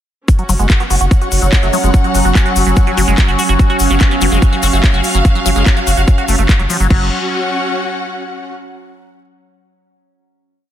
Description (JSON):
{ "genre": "psychedelic trance", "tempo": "145 BPM", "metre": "4/4", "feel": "straight", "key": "unclear", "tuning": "A4 = 440 Hz", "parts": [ { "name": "overtone-sweeping drone", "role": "sustained chords", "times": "0.9-6.9 s", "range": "F#3 to C#4", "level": "-20 LUFS", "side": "right 3 dB", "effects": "chorus, built-in reverb, sidechain pumping" }, { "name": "drum and bass drum kit", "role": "drums", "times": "0.3-7.0 s", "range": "crash cymbal, handclaps, hi-hat", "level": "-21 LUFS", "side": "left 1 dB", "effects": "none" }, { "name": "electronic kick drum", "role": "drums", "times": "0.3-7.0 s", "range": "none", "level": "-11 LUFS", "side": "equal", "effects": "none" }, { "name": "tube shaker", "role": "percussion", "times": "0.3-6.9 s", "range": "none", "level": "-25 LUFS", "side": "left 7 dB", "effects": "none" }, { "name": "rich symphonic string section", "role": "texture", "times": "0.3-8.5 s", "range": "C#4 to F#5", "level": "-20 LUFS", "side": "left 1 dB", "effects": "sidechain pumping" }, { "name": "liquid acid bass", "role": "riff", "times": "0.4-7.1 s", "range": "E#3 to F#4", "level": "-20 LUFS", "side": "equal", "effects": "phaser, auto-pan, sidechain pumping, tape echo" }, { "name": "round analog bass", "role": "bass", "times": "0.5-7.1 s", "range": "F#1", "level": "-15 LUFS", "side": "equal", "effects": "none" }, { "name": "resonant blip pluck", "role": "second line", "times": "0.6-5.7 s", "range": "F#3 to C#4", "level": "-29 LUFS", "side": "right 5 dB", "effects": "none" } ], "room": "light reverb", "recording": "dense, heavily limited modern master", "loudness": "-10 LUFS", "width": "side -11 dB against mid", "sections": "0.3-6.9 groove; 6.9-8.6 final chord", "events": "none", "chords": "0.3 F#5" }